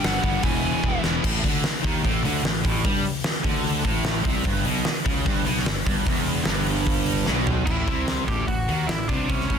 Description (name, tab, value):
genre	hard rock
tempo	149 BPM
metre	4/4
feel	straight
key	unclear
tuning	A4 = 440 Hz
part	biting lead guitar	melody	0.0-1.0, 7.7-9.6 s	C#4 to G#5	-30 LUFS	right 2 dB	overdrive, digital delay
part	distorted electric guitar	riff	0.0-9.6 s	E2 to E4	-30 LUFS	equal	overdrive
part	overdriven semi-hollow guitar	riff	0.0-9.6 s	E2 to G3	-29 LUFS	left 11 dB	none
part	tight distorted guitar	riff	0.0-9.6 s	E2 to G3	-30 LUFS	right 14 dB	distortion
part	fuzz fingered electric bass	bass	0.0-9.6 s	E1 to G2	-28 LUFS	equal	overdrive
part	huge arena drum kit	drums	0.0-9.6 s	crash cymbal, hi-hat, kick drum, snare drum, toms	-25 LUFS	equal	none
room	light reverb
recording	dense, heavily limited modern master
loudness	-21 LUFS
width	side -7 dB against mid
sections	0.0-1.2 A section; 1.2-7.7 B section; 7.7-9.6 C section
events	drum fill 0.8-1.2, 7.3-7.7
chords	0.4 E; 1.2 Amadd11; 4.5 Em6; 7.7 A5